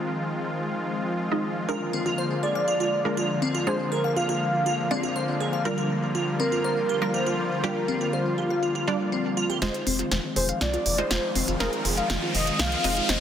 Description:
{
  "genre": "progressive house",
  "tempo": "121 BPM",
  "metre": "4/4",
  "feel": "straight",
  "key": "F dorian",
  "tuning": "A4 = 440 Hz",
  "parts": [
    { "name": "supersaw pad", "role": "sustained chords", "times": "0.0-13.2 s", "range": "D3 to F4", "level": "-29 LUFS", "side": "left 1 dB", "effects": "low-pass filter" },
    { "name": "wide unison pluck", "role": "stabs", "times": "0.0-13.2 s", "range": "G3 to Eb5", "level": "-31 LUFS", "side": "right 2 dB", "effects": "wide subtle chorus, tape echo" },
    { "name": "glassy wavetable pluck", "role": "arpeggios", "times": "1.7-13.1 s", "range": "C4 to F5", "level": "-29 LUFS", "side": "left 1 dB", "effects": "chorus, tape echo" },
    { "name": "warm velvety synth lead", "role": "melody", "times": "2.4-13.2 s", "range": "F4 to F5", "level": "-28 LUFS", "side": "equal", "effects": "chorus, cassette tape, tape echo" },
    { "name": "tight sequencer bass", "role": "bass", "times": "9.6-13.2 s", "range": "F1 to C2", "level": "-30 LUFS", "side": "equal", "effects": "none" },
    { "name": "deep house drum kit", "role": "drums", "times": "9.6-13.2 s", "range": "hi-hat, snare drum", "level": "-28 LUFS", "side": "equal", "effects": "low-pass filter on cymbals, low-pass filter on snare, low-pass filter on hats, low-pass filter on room" },
    { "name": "riser", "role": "sound effects", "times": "10.5-13.2 s", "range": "none", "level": "-32 LUFS", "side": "left 1 dB", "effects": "none" }
  ],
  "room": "wet lush hall reverb, RT60 2.0 s",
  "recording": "dense, heavily limited modern master",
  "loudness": "-23 LUFS",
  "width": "side -9 dB against mid",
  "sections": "0.0-9.6 A section; 9.6-13.2 B section",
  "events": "filter sweep on synth pluck 0.0-9.6; build-up 9.6-13.2; drum fill 9.6-13.2; filter sweep on synth arpeggio sound 9.6-13.2; filter sweep on supersaw synth 9.6-13.2; riser 10.5-13.2",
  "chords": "0.0 Fm7; 1.7 Bb7; 5.7 Gm7; 9.6 Fm7"
}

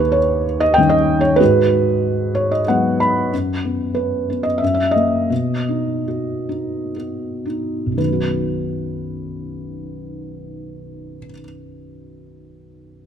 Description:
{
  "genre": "classical, lyrical solo piano",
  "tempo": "53-98 BPM",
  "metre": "3/4",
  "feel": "rubato",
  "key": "G# minor, B major from 3.3 s",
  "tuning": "A4 = 440 Hz",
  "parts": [
    { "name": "felt-muted upright piano", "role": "solo", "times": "0.0-13.1 s", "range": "B1 to B5", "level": "-17 LUFS", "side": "equal", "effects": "none" }
  ],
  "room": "light reverb",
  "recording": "close, detailed microphones",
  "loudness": "-16 LUFS",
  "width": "side -8 dB against mid",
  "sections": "0.0-3.3 A section; 3.3-8.0 B section; 8.0-13.1 C section",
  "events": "felt piano fill 2.0-3.3; slowing down 3.3-8.0",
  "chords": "0.0 D#7; 1.4 G#m7; 3.3 F#sus4; 4.6 F#; 5.3 B"
}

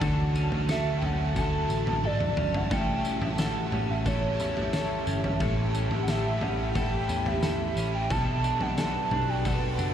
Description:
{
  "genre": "dream pop",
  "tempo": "89 BPM",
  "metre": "4/4",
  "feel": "straight",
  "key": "unclear",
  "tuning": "A4 = 442 Hz",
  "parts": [
    { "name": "overdriven electric guitar", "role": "accompaniment", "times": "0.0-9.9 s", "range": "A2 to A4", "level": "-35 LUFS", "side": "right 1 dB", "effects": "harmonic tremolo, ensemble chorus" },
    { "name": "ethereal airy pad", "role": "sustained chords", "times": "0.0-9.9 s", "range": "F#4 to B5", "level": "-34 LUFS", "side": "equal", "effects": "ensemble chorus, built-in reverb, phaser" },
    { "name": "clean electric guitar", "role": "arpeggios", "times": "0.0-9.9 s", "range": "A2 to A4", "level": "-32 LUFS", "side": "left 1 dB", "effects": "lush chorus, diffuse ambient delay" },
    { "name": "vintage muted picked electric bass", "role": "bass", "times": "0.0-9.9 s", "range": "F#1 to E2", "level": "-32 LUFS", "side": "equal", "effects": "none" },
    { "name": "oversized low-tuned drum kit", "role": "drums", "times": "0.0-9.9 s", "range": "kick drum, snare drum, tambourine, toms", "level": "-32 LUFS", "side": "equal", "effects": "none" },
    { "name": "warbly nostalgic lead", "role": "melody", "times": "0.7-9.9 s", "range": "C#5 to A5", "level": "-32 LUFS", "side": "right 3 dB", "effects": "chorus, diffuse ambient delay" }
  ],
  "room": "wet lush hall reverb, RT60 1.7 s",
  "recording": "dreamy mix soaked in reverb",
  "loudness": "-25 LUFS",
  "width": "side -9 dB against mid",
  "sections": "0.0-9.9 A section",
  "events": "drum fill 2.0-2.7",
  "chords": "0.0 Dmaj7; 2.7 A7; 8.1 Bm7"
}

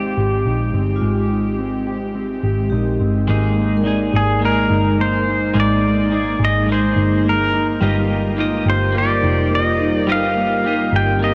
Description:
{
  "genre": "dream pop",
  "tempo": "106 BPM",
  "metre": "4/4",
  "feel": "straight",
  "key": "unclear",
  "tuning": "A4 = 439 Hz",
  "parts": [
    { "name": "pedal steel guitar", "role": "melody", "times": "0.0-11.3 s", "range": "G4 to G5", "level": "-23 LUFS", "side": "equal", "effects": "digital delay" },
    { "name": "ethereal airy pad", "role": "sustained chords", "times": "0.0-11.3 s", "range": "G3 to Bb4", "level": "-27 LUFS", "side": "equal", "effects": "ensemble chorus, built-in reverb" },
    { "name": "mellow electric guitar", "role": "arpeggios", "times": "0.0-11.3 s", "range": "G2 to Ab4", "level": "-24 LUFS", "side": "equal", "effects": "subtle chorus, digital delay" },
    { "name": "vintage muted picked electric bass", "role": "bass", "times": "0.0-11.3 s", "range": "F1 to Bb1", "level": "-23 LUFS", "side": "equal", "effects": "transformer saturation" },
    { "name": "vibraphone with medium hard mallets", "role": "texture", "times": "1.0-11.3 s", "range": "C4 to D5", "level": "-32 LUFS", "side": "equal", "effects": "digital delay" },
    { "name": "clean electric guitar", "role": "accompaniment", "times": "3.3-11.3 s", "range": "G3 to Eb5", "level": "-26 LUFS", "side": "equal", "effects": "harmonic tremolo, subtle chorus" }
  ],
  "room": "moderate huge ambient reverb, RT60 4.8 s",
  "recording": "worn, warbling old tape, cassette tape, warbly pitch drift",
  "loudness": "-18 LUFS",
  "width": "mono",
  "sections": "0.0-3.3 A section; 3.3-11.3 B section",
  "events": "none",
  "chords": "0.0 Abmaj7; 3.3 Absus2; 7.8 Ebadd9"
}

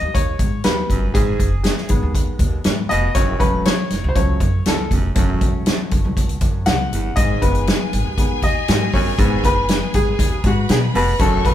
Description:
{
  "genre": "uptempo 1960s-style soul",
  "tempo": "119 BPM",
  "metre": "4/4",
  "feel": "straight",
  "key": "unclear",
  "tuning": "A4 = 435 Hz",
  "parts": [
    { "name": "clear upright piano", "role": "accompaniment", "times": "0.0-11.5 s", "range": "D#3 to F#5", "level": "-22 LUFS", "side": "left 1 dB", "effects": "none" },
    { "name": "upright bass", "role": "bass", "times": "0.0-11.5 s", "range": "E1 to B2", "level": "-22 LUFS", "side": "equal", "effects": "none" },
    { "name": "natural country drum kit", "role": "drums", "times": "0.1-11.5 s", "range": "hi-hat, kick drum, snare drum", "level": "-19 LUFS", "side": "equal", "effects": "none" },
    { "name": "congas", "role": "percussion", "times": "0.2-11.1 s", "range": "none", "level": "-31 LUFS", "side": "right 2 dB", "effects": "none" },
    { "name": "growling baritone saxophone", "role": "riff", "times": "0.6-11.5 s", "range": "D#2 to B2", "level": "-26 LUFS", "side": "right 4 dB", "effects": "none" },
    { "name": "bright studio string section", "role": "second line", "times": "7.2-11.5 s", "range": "G#4 to C#6", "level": "-27 LUFS", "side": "left 3 dB", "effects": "none" }
  ],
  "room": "light reverb",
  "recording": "band playing live in one room",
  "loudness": "-16 LUFS",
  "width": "side -11 dB against mid",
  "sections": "0.0-11.5 A section",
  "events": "upright piano solo 0.0-11.5",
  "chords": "0.0 G#m; 3.2 F#m; 7.2 G#m"
}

